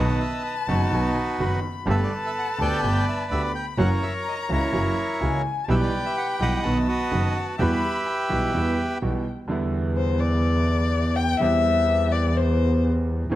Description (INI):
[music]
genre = tango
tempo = 126 BPM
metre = 4/4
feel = rubato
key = E minor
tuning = A4 = 440 Hz
[part]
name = bandoneon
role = melody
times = 0.0-9.0 s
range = D#4 to G5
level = -26 LUFS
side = right 1 dB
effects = none
[part]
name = warm violin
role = second line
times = 0.0-12.8 s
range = C5 to B5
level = -28 LUFS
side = left 6 dB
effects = none
[part]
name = bright concert grand piano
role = accompaniment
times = 0.0-13.4 s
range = F#1 to G4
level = -27 LUFS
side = right 2 dB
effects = none
[part]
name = warm double bass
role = bass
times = 0.0-13.4 s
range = F#1 to E2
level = -24 LUFS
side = equal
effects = none
[sound]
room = light reverb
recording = close, detailed microphones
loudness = -21 LUFS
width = side -14 dB against mid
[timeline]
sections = 0.0-9.5 A section; 9.5-13.4 B section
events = violin solo 9.5-13.4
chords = 0.0 B; 1.9 Gadd9; 3.8 F#7; 5.7 Em/B; 6.6 B; 7.6 Emadd9; 9.5 Em7; 11.4 C/E